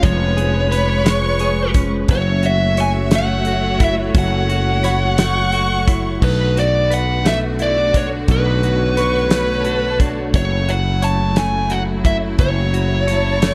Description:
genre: six-eight pop ballad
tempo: 58 BPM (dotted quarters)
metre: 6/8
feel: straight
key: F# minor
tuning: A4 = 441 Hz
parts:
  - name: smooth overdriven lead guitar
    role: melody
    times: 0.0-13.5 s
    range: B4 to A5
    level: -22 LUFS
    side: equal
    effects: none
  - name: direct-recorded clean electric guitar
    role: accompaniment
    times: 0.0-13.5 s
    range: B2 to C#5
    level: -26 LUFS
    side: equal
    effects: none
  - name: rich studio string section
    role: sustained chords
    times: 0.0-13.5 s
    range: C#3 to F#5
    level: -27 LUFS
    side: equal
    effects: none
  - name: sustaining fretless electric bass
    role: bass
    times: 0.0-13.5 s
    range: E#1 to B1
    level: -22 LUFS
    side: equal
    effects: none
  - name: damped 70s drum kit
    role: drums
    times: 0.0-13.5 s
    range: crash cymbal, hi-hat, kick drum, snare drum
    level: -20 LUFS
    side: equal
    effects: none
  - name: rich studio violin section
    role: second line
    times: 0.7-13.5 s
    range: A5 to C#6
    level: -28 LUFS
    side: equal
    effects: none
room: studio reverb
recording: none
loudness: -17 LUFS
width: mono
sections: 0.0-6.2 A section; 6.2-13.5 A section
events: none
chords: 0.0 C#/E#; 2.1 F#m7; 6.2 Bm7; 10.3 F#m7

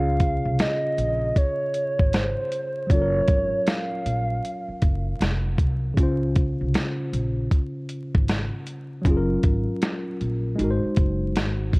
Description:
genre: lo-fi hip hop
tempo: 78 BPM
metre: 4/4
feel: swing 64% on 16ths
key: Db major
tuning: A4 = 440 Hz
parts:
  - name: warbly nostalgic lead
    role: melody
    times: 0.0-5.2 s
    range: C5 to F5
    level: -26 LUFS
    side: right 1 dB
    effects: chorus, low-pass filter
  - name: mellow tine electric piano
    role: accompaniment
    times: 0.0-11.8 s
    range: Db3 to Db5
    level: -28 LUFS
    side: equal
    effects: medium stereo tremolo, cassette tape, low-pass filter
  - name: upright bass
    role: bass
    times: 0.0-11.8 s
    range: F1 to Db2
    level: -26 LUFS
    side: equal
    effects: none
  - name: dusty soul sampler-style drum kit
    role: drums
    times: 0.2-11.8 s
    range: hi-hat, kick drum, snare drum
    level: -22 LUFS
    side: equal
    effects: none
room: light reverb, digital ambience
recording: worn, warbling old tape, cassette tape, vinyl crackle, warbly pitch drift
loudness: -21 LUFS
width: side -27 dB against mid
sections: 0.0-11.8 A section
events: none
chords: 0.0 Dbmaj7; 2.9 Gbmaj7; 6.0 Dbmaj7; 9.1 Gbmaj7; 10.6 Ab7

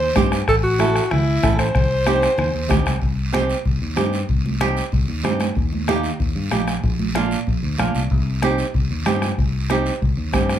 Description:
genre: latin, cumbia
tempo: 189 BPM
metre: 4/4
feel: straight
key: C dorian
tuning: A4 = 441 Hz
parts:
  - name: breathy alto saxophone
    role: melody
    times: 0.0-2.8 s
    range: E4 to C5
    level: -20 LUFS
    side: left 1 dB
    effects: none
  - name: fingered electric bass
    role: bass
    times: 0.0-10.6 s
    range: A1 to G2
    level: -22 LUFS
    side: equal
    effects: none
  - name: flamenco guitar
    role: accompaniment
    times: 0.2-10.6 s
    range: Bb3 to A4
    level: -21 LUFS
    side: right 5 dB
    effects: none
  - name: bombo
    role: percussion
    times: 0.2-10.6 s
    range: none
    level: -23 LUFS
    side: left 2 dB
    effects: none
  - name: congas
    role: percussion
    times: 0.2-10.6 s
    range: none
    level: -28 LUFS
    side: equal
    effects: none
  - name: guiro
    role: percussion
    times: 0.2-10.6 s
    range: none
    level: -32 LUFS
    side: right 3 dB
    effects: none
room: little or no reverb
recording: small room reverb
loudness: -17 LUFS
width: side -10 dB against mid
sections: 0.0-3.0 A section; 3.0-10.6 B section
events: none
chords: 0.5 A; 1.7 Cm; 5.6 Eb; 6.8 Bb; 8.1 Cm

